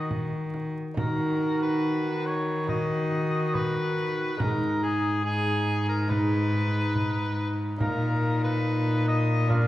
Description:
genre	classical, renaissance-style consort dance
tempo	70 BPM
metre	4/4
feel	straight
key	Eb minor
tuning	A4 = 441 Hz
part	warm oboe	melody	0.0-9.7 s	Ab4 to F5	-31 LUFS	left 1 dB	none
part	lute	accompaniment	0.0-9.7 s	Ab2 to F4	-34 LUFS	right 2 dB	none
part	warm viola	accompaniment	0.0-9.7 s	D4 to Gb4	-31 LUFS	equal	none
part	rich cello	bass	0.0-9.7 s	Ab2 to Eb3	-28 LUFS	left 1 dB	none
part	frame drum	percussion	0.1-9.7 s	none	-33 LUFS	right 1 dB	none
room	wet scoring stage reverb, RT60 1.8 s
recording	recorded in a church or concert hall, vinyl crackle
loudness	-24 LUFS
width	side -14 dB against mid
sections	1.0-9.7 A section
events	none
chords	0.0 Ebm; 4.4 Abm; 7.8 Bbsus4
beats	0.11 | 0.97 1.83 2.69 3.54 | 4.40 5.25 6.10 6.95 | 7.80 8.65 9.51

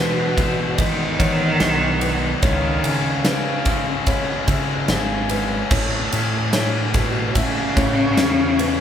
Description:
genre	post-rock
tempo	73 BPM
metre	4/4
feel	straight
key	unclear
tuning	A4 = 440 Hz
part	clear cello	melody	0.0-8.8 s	A2 to D#3	-22 LUFS	equal	none
part	felt-muted upright piano	arpeggios	0.0-8.8 s	B4 to E5	-31 LUFS	right 1 dB	none
part	tight distorted guitar	riff	0.0-8.8 s	A2 to E4	-24 LUFS	left 4 dB	distortion
part	fingered electric bass	bass	0.0-8.8 s	G#1 to E3	-25 LUFS	equal	none
part	huge arena drum kit	drums	0.4-8.8 s	crash cymbal, kick drum, ride cymbal, snare drum	-22 LUFS	right 1 dB	none
room	moderate recital hall reverb, RT60 1.7 s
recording	recorded in a church or concert hall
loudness	-17 LUFS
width	side -9 dB against mid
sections	0.0-8.8 A section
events	none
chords	0.0 Emaj7; 2.4 C#m7; 5.7 A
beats	0.79 1.61 | 2.43 3.25 4.07 4.90 | 5.72 6.54 7.36 8.19

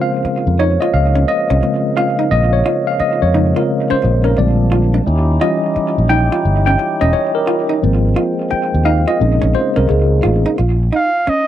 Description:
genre	R&B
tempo	87 BPM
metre	4/4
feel	swing 64% on 16ths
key	Bb dorian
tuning	A4 = 440 Hz
part	hollow-body jazz guitar	second line	0.0-11.4 s	Db4 to F4	-22 LUFS	right 5 dB	tape echo
part	tine electric piano	accompaniment	0.0-10.6 s	Db3 to G5	-16 LUFS	left 1 dB	overdrive, fast stereo tremolo
part	tonewheel organ	sustained chords	0.0-10.6 s	Db3 to G4	-23 LUFS	left 1 dB	slow rotary speaker, overdrive
part	fretless electric bass	bass	0.2-11.3 s	Fb1 to F2	-14 LUFS	equal	none
part	warm flugelhorn	melody	10.9-11.5 s	Eb5 to F5	-14 LUFS	right 2 dB	none
room	little or no reverb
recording	dry, close 1970s-style studio recording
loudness	-12 LUFS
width	side -11 dB against mid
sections	0.0-10.6 A section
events	tine electric piano solo 0.0-10.6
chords	0.0 Bbm9; 4.4 Bb13; 5.1 Eb7b9; 7.8 Ab6; 9.2 Bbm11; 10.6 Bb5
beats	0.23 0.92 1.61 | 2.30 2.99 3.68 4.37 | 5.06 5.75 6.44 7.13 | 7.82 8.51 9.20 9.89 | 10.58 11.27

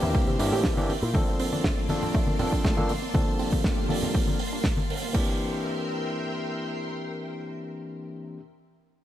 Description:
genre	nu-disco, nu disco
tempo	120 BPM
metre	4/4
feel	straight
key	C mixolydian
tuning	A4 = 438 Hz
part	overdriven tine electric piano	accompaniment	0.0-8.4 s	E3 to A4	-30 LUFS	left 1 dB	low-pass filter, slapback echo
part	string machine, full ensemble	sustained chords	0.0-8.4 s	G3 to C6	-35 LUFS	equal	ensemble chorus, sidechain pumping
part	analog pluck	arpeggios	0.0-5.4 s	A3 to G4	-35 LUFS	right 4 dB	chorus, sidechain pumping, analog delay
part	picked electric bass with an envelope filter	bass	0.0-1.1 s	C2 to C3	-28 LUFS	equal	none
part	congas	percussion	0.0-4.9 s	none	-33 LUFS	left 2 dB	none
part	electronic kick drum	drums	0.1-5.2 s	none	-27 LUFS	equal	overdrive, studio reverb
part	damped 70s drum kit	drums	0.4-5.2 s	crash cymbal, hi-hat, snare drum	-33 LUFS	right 2 dB	studio reverb
room	light reverb, small room ambience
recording	none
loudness	-24 LUFS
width	side -12 dB against mid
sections	0.0-5.1 A section; 5.1-9.0 B section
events	filter sweep on tine electric piano 0.0-5.1; filter sweep on synth arpeggio sound 0.0-5.1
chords	0.0 C7; 1.1 Bbmaj9; 3.1 Gm11; 5.1 C7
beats	0.14 0.64 | 1.14 1.64 2.14 2.64 | 3.14 3.64 4.14 4.64 | 5.14 5.64 6.14 6.64 | 7.14 7.64 8.14

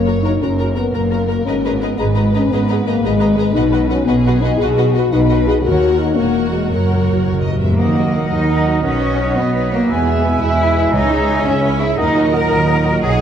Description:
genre	cinematic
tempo	114 BPM (dotted quarters)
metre	6/8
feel	straight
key	unclear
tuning	A4 = 440 Hz
part	dark symphonic violin section	melody	0.0-13.2 s	F#4 to G#5	-27 LUFS	left 2 dB	none
part	dark French horn section	sustained chords	0.0-13.2 s	F#3 to E5	-18 LUFS	left 4 dB	none
part	clear symphonic double bass section	bass	0.0-13.2 s	E1 to E2	-20 LUFS	right 3 dB	none
part	rich symphonic cello section	bass	0.0-13.2 s	D#2 to A#4	-19 LUFS	right 1 dB	none
part	warm studio violin section	second line	0.1-13.2 s	F#4 to A#5	-30 LUFS	left 3 dB	none
part	warm symphonic viola section	accompaniment	0.1-13.2 s	D#4 to B4	-26 LUFS	right 3 dB	none
part	timpani	percussion	6.7-7.8, 10.9-11.4 s	F#2 to C#3	-22 LUFS	equal	none
part	mellow hollow large flute ensemble	second line	7.8-13.1 s	F#5 to G#5	-26 LUFS	right 2 dB	none
part	warm clarinet	second line	7.8-13.1 s	A#4 to C#5	-29 LUFS	left 1 dB	none
part	warm oboe	second line	7.8-13.1 s	D#5 to E5	-26 LUFS	right 2 dB	none
part	mellow trombone section	sustained chords	7.8-13.2 s	A#2 to G#3	-23 LUFS	right 2 dB	none
room	wet scoring stage reverb, RT60 1.8 s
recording	dark, warm production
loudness	-13 LUFS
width	side -8 dB against mid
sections	0.0-7.8 A section; 7.8-13.2 B section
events	timpani fill 6.7-7.8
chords	0.0 F#; 1.5 G#madd9; 3.6 B; 5.6 D#m7; 6.7 F#; 7.8 D#m; 8.8 Badd9; 9.9 E; 10.9 C#m; 12.0 D#m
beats	| 0.42 0.95 | 1.47 2.00 | 2.52 3.04 | 3.56 4.08 | 4.60 5.12 | 5.65 6.17 | 6.71 7.25 | 7.78 8.31 | 8.83 9.36 | 9.88 10.41 | 10.93 11.46 | 11.98 12.51 | 13.03

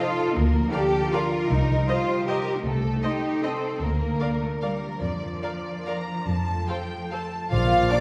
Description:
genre	classical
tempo	134-171 BPM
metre	3/4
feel	rubato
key	Bb major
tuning	A4 = 440 Hz
part	bright symphonic violin section	melody	0.0-8.0 s	Eb5 to D6	-32 LUFS	equal	none
part	rich symphonic violin section	second line	0.0-8.0 s	F4 to Bb5	-35 LUFS	equal	none
part	rich symphonic viola section	accompaniment	0.0-8.0 s	Bb3 to Eb5	-36 LUFS	equal	none
part	concert harp	arpeggios	0.0-8.0 s	Bb2 to Bb4	-34 LUFS	equal	none
part	clear symphonic cello section	bass	0.0-8.0 s	F3 to G4	-30 LUFS	equal	none
part	rich symphonic double bass section	bass	0.4-7.8 s	Bb1 to F2	-30 LUFS	equal	none
part	silver concert flute	second line	7.5-8.0 s	F5 to D6	-36 LUFS	equal	none
part	warm oboe	second line	7.5-8.0 s	D5	-34 LUFS	equal	none
part	mellow bassoon	accompaniment	7.5-8.0 s	F3	-31 LUFS	equal	none
part	dark French horn section	sustained chords	7.5-8.0 s	F3 to D4	-31 LUFS	equal	none
part	bright trumpet	stabs	7.5-8.0 s	F4 to D5	-32 LUFS	equal	none
part	timpani	percussion	7.5-8.0 s	Bb2	-29 LUFS	equal	none
part	clear clarinet	second line	7.9-8.0 s	D5	-25 LUFS	equal	none
room	wet scoring stage reverb, RT60 1.8 s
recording	heard from further back in the room, vinyl crackle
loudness	-25 LUFS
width	mono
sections	0.0-7.5 A section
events	none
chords	0.4 Bb/D; 1.5 Cm; 2.6 Adim/C; 3.8 Bb/D; 5.0 Bb/F; 6.3 F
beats	0.00 | 0.36 0.73 1.13 | 1.50 1.88 2.27 | 2.65 3.03 3.43 | 3.81 4.20 4.62 | 5.01 5.43 5.87 | 6.28 6.69 7.12 | 7.52 7.92

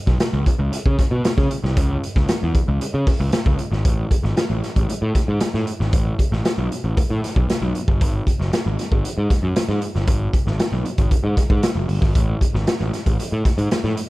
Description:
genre	funk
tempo	116 BPM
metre	4/4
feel	straight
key	unclear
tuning	A4 = 439 Hz
part	fuzz picked electric bass	bass	0.1-13.9 s	F#1 to C#3	-21 LUFS	equal	overdrive
part	raw garage drum kit	drums	0.1-14.1 s	hi-hat, kick drum, snare drum	-20 LUFS	equal	none
room	little or no reverb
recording	none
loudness	-17 LUFS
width	side -19 dB against mid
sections	0.0-3.9 A section; 3.9-14.1 B section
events	none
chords	none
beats	0.20 0.73 1.25 | 1.77 2.29 2.81 3.33 | 3.85 4.37 4.89 5.41 | 5.93 6.45 6.97 7.49 | 8.01 8.53 9.04 9.56 | 10.08 10.60 11.12 11.64 | 12.15 12.67 13.19 13.71

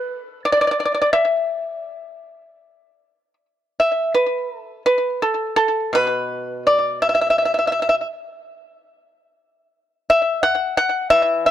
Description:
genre	chinese traditional, Chinese solo plucked strings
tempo	76-90 BPM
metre	4/4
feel	rubato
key	E shang mode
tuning	A4 = 441 Hz
part	pipa	solo	0.0-11.5 s	B2 to F#5	-17 LUFS	equal	slapback echo
room	studio reverb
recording	dry, close 1970s-style studio recording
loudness	-17 LUFS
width	side -11 dB against mid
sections	0.0-4.1 A section; 4.1-11.5 B section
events	none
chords	none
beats	0.45 | 1.16 1.87 2.61 3.39 | 4.13 4.86 5.58 6.30 | 7.01 7.70 8.39 9.07 | 9.76 10.44 11.13

